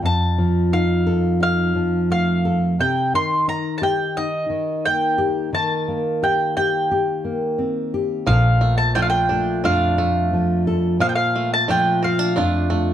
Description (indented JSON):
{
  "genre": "acoustic folk duo or small band",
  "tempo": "88 BPM",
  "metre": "4/4",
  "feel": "straight",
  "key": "unclear",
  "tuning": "A4 = 442 Hz",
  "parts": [
    { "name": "nylon-string guitar", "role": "accompaniment", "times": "0.0-12.9 s", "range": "F2 to A4", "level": "-20 LUFS", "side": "left 1 dB", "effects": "none" },
    { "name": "mandolin", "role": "melody", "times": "0.1-12.9 s", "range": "Eb5 to C6", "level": "-21 LUFS", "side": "right 1 dB", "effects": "none" },
    { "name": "bluegrass banjo", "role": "arpeggios", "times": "8.3-12.9 s", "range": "F3 to F4", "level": "-27 LUFS", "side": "right 4 dB", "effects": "none" },
    { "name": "dark double bass", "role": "bass", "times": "8.3-12.9 s", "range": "Bb1", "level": "-20 LUFS", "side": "equal", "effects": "none" }
  ],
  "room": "moderate large studio reverb, RT60 0.9 s",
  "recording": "dark, warm production",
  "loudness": "-17 LUFS",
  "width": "side -10 dB against mid",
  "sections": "0.0-8.3 A section; 8.3-12.9 B section",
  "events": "none",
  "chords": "0.0 F7; 2.8 Cm7; 5.5 Eb6; 8.3 Bbmaj7",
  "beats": "| 0.04 0.73 1.41 2.10 | 2.79 3.47 4.16 4.84 | 5.53 6.22 6.90 7.59 | 8.27 8.96 9.64 10.33 | 11.01 11.70 12.38"
}